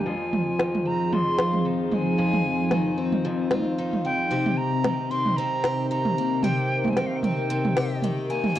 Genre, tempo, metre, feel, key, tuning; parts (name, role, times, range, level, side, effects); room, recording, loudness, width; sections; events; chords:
folktronica; 113 BPM; 4/4; swing 56% on 16ths; A4 = 440 Hz
silver concert flute; melody; 0.0-8.6 s; F5 to C6; -28 LUFS; right 2 dB; vintage 12-bit sampler grit, tape echo
warm analog pad; sustained chords; 0.0-8.6 s; C3 to Bb4; -27 LUFS; left 2 dB; chorus
picked twelve-string acoustic guitar; arpeggios; 0.0-8.6 s; F2 to G4; -29 LUFS; left 1 dB; low-pass filter, tape echo
organic electronic drum kit; drums; 0.0-8.5 s; snare drum, toms; -26 LUFS; right 1 dB; studio reverb
moderate booth ambience, RT60 0.2 s; dry, close 1970s-style studio recording; -22 LUFS; side -12 dB against mid
0.0-8.6 A section
filter sweep on twelve-string acoustic guitar 0.0-8.6; filter sweep on analog synth pad 0.0-8.6
0.1 Fm7; 4.3 Cm7